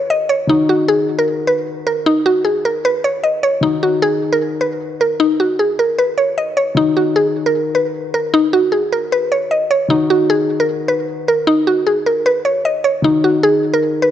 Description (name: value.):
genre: hip hop.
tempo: 153 BPM.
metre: 4/4.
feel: half-time.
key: Eb minor.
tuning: A4 = 439 Hz.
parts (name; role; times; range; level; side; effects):
mallet-like synth pluck; melody; 0.0-14.1 s; Eb4 to Eb5; -14 LUFS; equal; chorus, low-pass filter.
dark concert grand piano; accompaniment; 0.0-14.1 s; Eb3 to Gb4; -21 LUFS; left 4 dB; low-pass filter.
room: moderate lush hall reverb, RT60 2.6 s.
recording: dark, warm production.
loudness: -13 LUFS.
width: side -10 dB against mid.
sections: 0.0-13.0 A section; 13.0-14.1 B section.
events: none.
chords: 0.0 Ebm.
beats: 0.10 | 0.49 0.89 1.28 1.67 | 2.06 2.45 2.85 3.24 | 3.63 4.02 4.42 4.81 | 5.20 5.59 5.98 6.38 | 6.77 7.16 7.55 7.94 | 8.34 8.73 9.12 9.51 | 9.90 10.30 10.69 11.08 | 11.47 11.87 12.26 12.65 | 13.04 13.43 13.83.